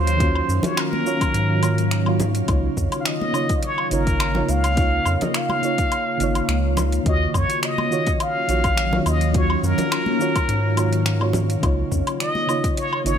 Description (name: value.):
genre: sunset chillout.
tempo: 105 BPM.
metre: 4/4.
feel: swing 54% on 16ths.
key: Eb minor.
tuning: A4 = 439 Hz.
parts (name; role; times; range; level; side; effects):
trumpet with plunger mute; melody; 0.0-13.2 s; Bb4 to F5; -25 LUFS; equal; ping-pong delay.
mellow FM electric piano; accompaniment; 0.0-13.2 s; Db3 to Db5; -25 LUFS; right 1 dB; chorus, auto-pan, ping-pong delay.
ethereal airy pad; sustained chords; 0.0-13.2 s; Db3 to F5; -27 LUFS; equal; ensemble chorus, built-in reverb, phaser.
round analog bass; bass; 0.0-13.2 s; Ab1 to Ab2; -22 LUFS; equal; none.
deep house drum kit; drums; 0.1-13.2 s; finger snaps, hi-hat, shaker, woodblock; -28 LUFS; left 2 dB; overdrive.
electronic kick drum; drums; 0.2-12.7 s; none; -23 LUFS; equal; overdrive.
congas; percussion; 0.6-12.5 s; none; -28 LUFS; left 1 dB; none.
room: light reverb.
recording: none.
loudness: -18 LUFS.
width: side -8 dB against mid.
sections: 0.0-13.2 A section.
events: none.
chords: 0.0 Ebm9; 2.5 Db6; 7.1 Ebm9; 11.6 Db6.